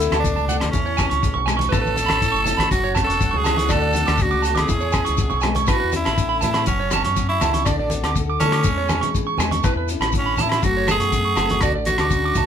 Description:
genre	highlife guitar band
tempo	121 BPM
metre	4/4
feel	straight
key	A major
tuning	A4 = 444 Hz
part	raspy tenor saxophone	melody	0.0-12.5 s	C#4 to A4	-23 LUFS	right 1 dB	none
part	picked steel-string acoustic guitar	accompaniment	0.0-12.5 s	A2 to B4	-28 LUFS	left 8 dB	none
part	deep dub fingered electric bass	bass	0.0-12.5 s	E1 to E3	-25 LUFS	left 1 dB	none
part	cloth-damped thuddy drum kit	drums	0.0-12.5 s	hi-hat, kick drum, rim click	-24 LUFS	equal	none
part	shekere	percussion	0.0-12.5 s	none	-31 LUFS	left 7 dB	none
part	electric guitar at the edge of break-up	arpeggios	0.1-12.5 s	B4 to D6	-24 LUFS	right 8 dB	none
part	agogo bells	percussion	0.1-12.1 s	none	-32 LUFS	left 4 dB	none
part	congas	percussion	0.1-12.5 s	none	-29 LUFS	right 1 dB	none
part	tonewheel organ	sustained chords	1.7-5.7 s	C#5 to B5	-35 LUFS	left 3 dB	slow rotary speaker, overdrive, chorus vibrato
room	moderate studio ambience, RT60 0.5 s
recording	band playing live in one room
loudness	-17 LUFS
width	side -8 dB against mid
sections	0.0-5.7 A section; 5.7-12.5 B section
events	none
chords	0.0 D; 0.7 E6; 1.7 Aadd9; 2.7 F#m; 3.7 D; 4.7 E6; 5.7 Aadd9; 6.7 F#m; 7.7 D; 8.6 E6; 9.6 Aadd9; 10.6 F#m; 11.6 D

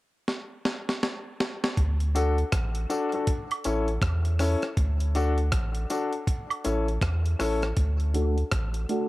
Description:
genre	dub reggae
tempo	80 BPM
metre	4/4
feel	swing 62% on 16ths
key	unclear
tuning	A4 = 441 Hz
part	breakbeat sampler-style drum kit	drums	0.3-9.1 s	hi-hat, kick drum, rim click, snare drum	-28 LUFS	equal	none
part	warm sub bass	bass	1.8-8.9 s	A1 to E2	-26 LUFS	equal	none
part	warm grand piano	stabs	2.1-9.1 s	C#4 to A4	-29 LUFS	left 3 dB	low-pass filter, dub echo
part	tambourine and woodblock	percussion	2.2-7.6 s	none	-35 LUFS	right 5 dB	dub echo
part	electric guitar at the edge of break-up	accompaniment	8.1-9.1 s	A3 to A4	-30 LUFS	right 4 dB	wide subtle chorus, low-pass filter
room	light reverb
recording	none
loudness	-24 LUFS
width	side -18 dB against mid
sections	0.0-1.8 A section; 1.8-7.8 B section; 7.8-9.1 C section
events	drum fill 0.3-1.8; filter sweep 7.8-9.1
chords	0.0 N.C.; 1.8 D; 3.3 A; 4.8 D; 6.3 A; 7.8 D

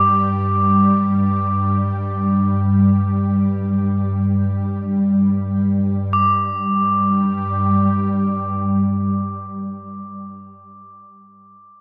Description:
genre	world meditative, free-time meditation music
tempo	free time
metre	none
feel	none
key	unclear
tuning	A4 = 440 Hz
part	ethereal airy pad	drone	0.0-9.4 s	G2 to G3	-20 LUFS	equal	ensemble chorus, built-in reverb
part	crotales	texture	0.0-9.4 s	D6 to G6	-24 LUFS	equal	none
room	wet plate reverb, RT60 3.2 s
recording	dreamy mix soaked in reverb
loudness	-18 LUFS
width	mono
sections	0.0-6.1 A section; 6.1-10.1 B section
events	none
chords	none

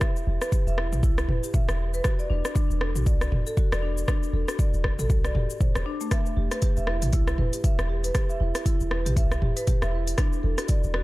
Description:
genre	afro house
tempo	118 BPM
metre	4/4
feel	swing 58% on 16ths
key	E minor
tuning	A4 = 445 Hz
part	marimba with medium mallets	arpeggios	0.0-11.0 s	A3 to E5	-31 LUFS	equal	sidechain pumping, digital delay
part	deep house drum kit	drums	0.0-11.0 s	cabasa, hi-hat, rim click, toms	-31 LUFS	equal	none
part	electronic kick drum	drums	0.0-10.8 s	none	-24 LUFS	equal	none
part	warm 808-style bass	bass	0.3-11.0 s	E1 to B1	-27 LUFS	equal	sidechain pumping
room	little or no reverb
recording	dark, warm production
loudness	-22 LUFS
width	side -19 dB against mid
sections	0.0-11.0 A section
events	none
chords	0.0 E5; 2.0 D5/E; 6.1 Em; 10.2 D5

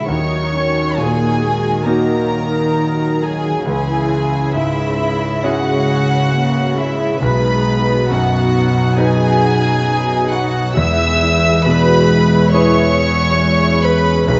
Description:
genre	cinematic, emotional film score for orchestra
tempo	68 BPM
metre	4/4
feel	rubato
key	unclear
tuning	A4 = 440 Hz
part	warm chamber violin section	melody	0.0-14.4 s	E5 to E6	-24 LUFS	equal	none
part	dark studio violin section	second line	0.0-14.4 s	E4 to E5	-23 LUFS	equal	none
part	bright concert grand piano	accompaniment	0.0-14.4 s	B1 to B4	-21 LUFS	equal	none
part	dark symphonic viola section	accompaniment	0.0-14.4 s	E3 to F#4	-23 LUFS	equal	none
part	warm symphonic cello section	bass	0.0-14.4 s	E2 to D#3	-22 LUFS	equal	none
room	moderate scoring stage reverb, RT60 2.0 s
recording	nothing above 7.7 kHz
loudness	-15 LUFS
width	mono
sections	0.0-14.4 A section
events	none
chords	0.1 D#m7; 3.7 C#m; 7.2 B; 10.8 E

